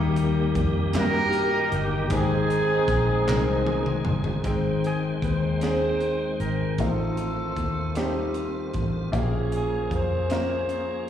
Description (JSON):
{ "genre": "slow gospel", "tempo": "51 BPM (dotted quarters)", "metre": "6/8", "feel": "straight", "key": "Ab major", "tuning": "A4 = 442 Hz", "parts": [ { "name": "bright upright piano", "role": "accompaniment", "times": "0.0-11.1 s", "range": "Ab2 to G5", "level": "-28 LUFS", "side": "left 2 dB", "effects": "slapback echo" }, { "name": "tonewheel organ", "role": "sustained chords", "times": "0.0-11.1 s", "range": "Eb3 to G5", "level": "-31 LUFS", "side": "right 2 dB", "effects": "slow rotary speaker, chorus vibrato" }, { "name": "fingered electric bass", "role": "bass", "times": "0.0-11.0 s", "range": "G1 to G2", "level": "-27 LUFS", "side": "left 1 dB", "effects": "none" }, { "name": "crisp fusion drum kit", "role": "drums", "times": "0.2-10.9 s", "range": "hi-hat, kick drum, snare drum, toms", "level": "-32 LUFS", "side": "equal", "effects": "none" }, { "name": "mellow horn section", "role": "melody", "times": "1.0-4.1 s", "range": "C4 to Bb4", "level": "-25 LUFS", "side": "right 2 dB", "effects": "slapback echo, tape echo" }, { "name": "group handclap", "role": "percussion", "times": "1.0-3.6 s", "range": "none", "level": "-36 LUFS", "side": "right 3 dB", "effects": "none" }, { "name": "breathy alto saxophone", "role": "melody", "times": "4.9-11.1 s", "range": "Ab4 to C5", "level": "-30 LUFS", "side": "left 1 dB", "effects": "slapback echo" } ], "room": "light reverb, small room ambience", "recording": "live gig heard through the venue's PA, recital hall reverb", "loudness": "-22 LUFS", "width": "side -10 dB against mid", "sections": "0.0-4.4 A section; 4.4-11.1 B section", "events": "drum fill 3.3-4.4", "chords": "0.0 Eb; 2.1 Ab; 4.4 Abmaj7; 6.8 F7/A; 9.1 Bbm7", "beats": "0.94 | 2.11 3.28 | 4.45 5.62 | 6.79 7.96 | 9.13 10.30" }